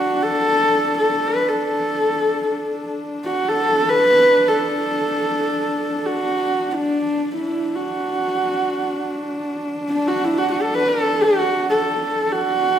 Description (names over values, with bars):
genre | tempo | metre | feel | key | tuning
mongolian traditional, Mongolian folk | free time | none | none | D gong mode | A4 = 440 Hz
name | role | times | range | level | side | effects
dark horsehead fiddle | melody | 0.0-12.8 s | D4 to B4 | -18 LUFS | equal | none
warm horsehead fiddle | drone | 0.0-12.8 s | D4 | -26 LUFS | left 1 dB | none
room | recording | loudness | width
wet recital hall reverb, RT60 1.5 s | minimal, uncompressed stereo recording | -17 LUFS | side -9 dB against mid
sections
0.0-12.8 A section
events
none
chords
none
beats
free time